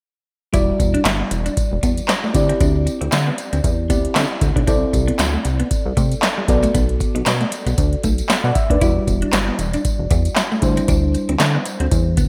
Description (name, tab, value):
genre	early-eighties boogie funk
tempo	116 BPM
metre	4/4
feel	swing 56% on 16ths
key	E minor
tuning	A4 = 440 Hz
part	mellow FM electric piano	accompaniment	0.5-12.3 s	G3 to F#5	-25 LUFS	equal	chorus
part	clean electric guitar	riff	0.5-12.3 s	G3 to E4	-29 LUFS	equal	analog chorus
part	chorused synth bass	bass	0.5-12.3 s	E1 to D3	-22 LUFS	equal	none
part	electro analog drum machine	drums	0.5-12.3 s	handclaps, hi-hat, kick drum, snare drum	-22 LUFS	equal	gated reverb
part	tambourine	percussion	0.5-12.3 s	none	-36 LUFS	equal	none
room	light reverb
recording	bright 1980s-style digital production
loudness	-18 LUFS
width	mono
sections	0.5-12.3 A section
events	none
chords	0.5 Em9; 2.3 D9sus4; 4.7 C69; 6.5 Bm7; 8.8 Em9; 10.6 D9sus4